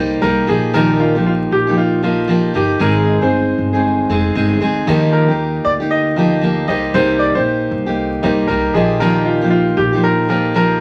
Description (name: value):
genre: acoustic pop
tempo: 116 BPM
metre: 4/4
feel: swing 60% on 16ths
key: Eb major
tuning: A4 = 440 Hz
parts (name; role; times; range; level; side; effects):
- bright upright piano; melody; 0.0-10.8 s; F4 to Eb5; -21 LUFS; equal; none
- picked steel-string acoustic guitar; accompaniment; 0.0-10.8 s; Ab2 to Ab4; -17 LUFS; equal; none
- upright bass; bass; 0.0-10.8 s; F1 to Eb2; -25 LUFS; equal; none
- clear concert grand piano; accompaniment; 4.9-10.8 s; Bb3 to Eb5; -28 LUFS; equal; none
room: moderate studio reverb, RT60 0.6 s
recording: vinyl crackle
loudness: -15 LUFS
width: mono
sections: 0.0-10.8 A section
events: none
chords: 0.5 Ebadd9/Bb; 2.8 Ab; 4.9 Ebadd9; 6.7 Cm7; 8.7 Ebadd9/Bb